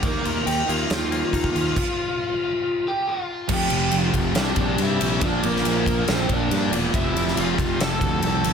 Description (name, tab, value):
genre	quiet-loud alternative rock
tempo	139 BPM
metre	4/4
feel	straight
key	F major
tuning	A4 = 440 Hz
part	bluesy overdriven lead guitar	melody	0.0-8.5 s	Bb3 to A5	-26 LUFS	left 1 dB	distortion, tape echo
part	semi-hollow electric guitar	arpeggios	0.0-1.8 s	Eb3 to F4	-33 LUFS	left 7 dB	none
part	distorted electric guitar	riff	0.0-8.5 s	F2 to Eb4	-27 LUFS	right 13 dB	distortion
part	fuzz fingered electric bass	bass	0.0-8.5 s	E1 to G2	-27 LUFS	equal	overdrive
part	big rock drum kit	drums	0.0-8.5 s	crash cymbal, kick drum, ride cymbal, snare drum	-25 LUFS	equal	none
part	thick fuzz guitar	riff	3.5-8.5 s	F2 to C4	-27 LUFS	left 11 dB	distortion
room	light reverb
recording	none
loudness	-20 LUFS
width	side -6 dB against mid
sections	0.0-3.5 A section; 3.5-8.5 B section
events	stop 1.8-3.5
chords	0.0 Ebsus2; 3.5 F5; 4.4 Cadd9; 5.2 Bb; 6.9 F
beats	| 0.04 0.47 0.90 1.34 | 1.77 2.20 2.63 3.06 | 3.50 3.93 4.36 4.79 | 5.22 5.65 6.08 6.51 | 6.95 7.38 7.81 8.24